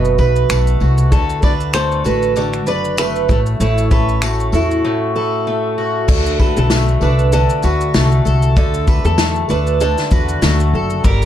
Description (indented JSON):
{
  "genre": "acoustic pop",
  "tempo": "97 BPM",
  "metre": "4/4",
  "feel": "swing 55% on 16ths",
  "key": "D major",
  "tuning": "A4 = 440 Hz",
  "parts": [
    { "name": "flamenco guitar", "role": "melody", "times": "0.0-10.9 s", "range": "E4 to D5", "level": "-20 LUFS", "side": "right 3 dB", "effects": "none" },
    { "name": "fingerpicked twelve-string acoustic guitar", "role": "accompaniment", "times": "0.0-11.3 s", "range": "A2 to B4", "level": "-20 LUFS", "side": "left 2 dB", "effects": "none" },
    { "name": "upright bass", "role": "bass", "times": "0.0-11.3 s", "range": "F#1 to E2", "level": "-16 LUFS", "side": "equal", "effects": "none" },
    { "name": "natural country drum kit", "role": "drums", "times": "0.0-11.3 s", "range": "crash cymbal, finger snaps, kick drum, shaker, snare drum", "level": "-17 LUFS", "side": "equal", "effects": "none" },
    { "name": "picked steel-string acoustic guitar", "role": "arpeggios", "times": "0.2-11.3 s", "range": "A4 to B4", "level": "-27 LUFS", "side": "right 8 dB", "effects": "plate reverb, tape echo" },
    { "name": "tambourine", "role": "percussion", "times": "0.2-10.6 s", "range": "none", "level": "-34 LUFS", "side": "left 10 dB", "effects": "none" }
  ],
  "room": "light reverb",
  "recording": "dark, warm production",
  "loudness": "-13 LUFS",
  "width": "side -11 dB against mid",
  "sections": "0.0-6.1 A section; 6.1-11.3 B section",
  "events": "break 4.8-6.1",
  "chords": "0.0 Bm7; 1.1 D6; 3.3 A6; 6.1 D"
}